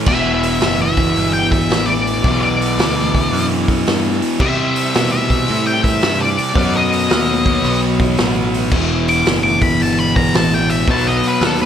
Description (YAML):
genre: blues rock power trio and southern rock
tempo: 111 BPM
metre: 4/4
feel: swing 67% on 8ths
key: E minor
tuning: A4 = 439 Hz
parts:
  - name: fuzz guitar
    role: riff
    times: 0.0-11.7 s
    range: E2 to C4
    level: -17 LUFS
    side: equal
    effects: distortion, slapback echo
  - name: octave-fuzz lead guitar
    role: melody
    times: 0.1-11.7 s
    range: A4 to D6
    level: -19 LUFS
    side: left 2 dB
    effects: distortion
  - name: growling picked electric bass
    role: bass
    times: 0.1-11.7 s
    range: E1 to C3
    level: -21 LUFS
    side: equal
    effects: overdrive
  - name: vintage drum kit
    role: drums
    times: 0.1-11.7 s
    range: crash cymbal, hi-hat, kick drum, snare drum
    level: -19 LUFS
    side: equal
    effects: none
room: light reverb, small room ambience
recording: none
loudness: -13 LUFS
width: side -9 dB against mid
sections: 0.0-11.7 A section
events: lead electric guitar solo 0.0-11.7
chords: 0.1 Em9; 4.4 Cmaj7; 6.6 B7; 8.7 Emadd9; 10.9 B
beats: | 0.08 0.62 1.16 1.70 | 2.24 2.78 3.32 3.86 | 4.40 4.94 5.48 6.02 | 6.56 7.10 7.64 8.18 | 8.72 9.26 9.80 10.34 | 10.88 11.42